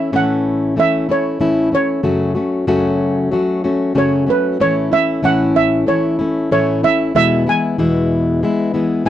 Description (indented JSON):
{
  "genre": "pop",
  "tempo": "94 BPM",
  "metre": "4/4",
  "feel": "straight",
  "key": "A major",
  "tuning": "A4 = 440 Hz",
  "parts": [
    { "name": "steel pan", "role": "melody", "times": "0.0-9.1 s", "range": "B4 to G#5", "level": "-17 LUFS", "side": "right 4 dB", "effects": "none" },
    { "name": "fingerpicked plugged-in steel-string acoustic guitar", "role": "accompaniment", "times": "0.0-9.1 s", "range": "E2 to F#4", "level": "-15 LUFS", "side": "left 2 dB", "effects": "none" }
  ],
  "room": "light reverb",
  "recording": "dry, close 1970s-style studio recording",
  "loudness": "-14 LUFS",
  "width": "side -11 dB against mid",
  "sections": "0.0-9.1 A section",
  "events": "none",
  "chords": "0.0 A; 2.0 F#m; 4.6 A; 7.1 E",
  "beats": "0.13 0.77 1.40 | 2.04 2.68 3.32 3.95 | 4.59 5.23 5.87 6.50 | 7.14 7.78 8.41 9.05"
}